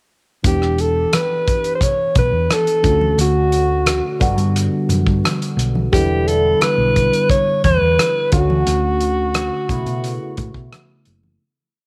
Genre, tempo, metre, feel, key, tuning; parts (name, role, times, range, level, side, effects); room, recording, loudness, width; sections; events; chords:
lush 1970s-style soul; 88 BPM; 4/4; straight; E dorian; A4 = 439 Hz
barky tine electric piano; accompaniment; 0.4-11.4 s; C#3 to G4; -25 LUFS; equal; phaser
hollow-body short-scale fingered electric bass; bass; 0.4-11.4 s; E1 to B2; -22 LUFS; equal
warm soul drum kit; drums; 0.4-11.2 s; hi-hat, kick drum, rim click; -23 LUFS; equal
congas; percussion; 0.4-11.4 s; -30 LUFS; equal
breathy alto saxophone; melody; 0.5-11.0 s; F#4 to C#5; -20 LUFS; equal
light reverb, studio reverb; -17 LUFS; mono
0.4-11.4 verse
fade-out 8.7-11.4
0.4 Em7; 2.8 Dmaj7; 4.2 Gmaj7; 5.9 Em7; 8.3 Dmaj7; 9.7 B9sus4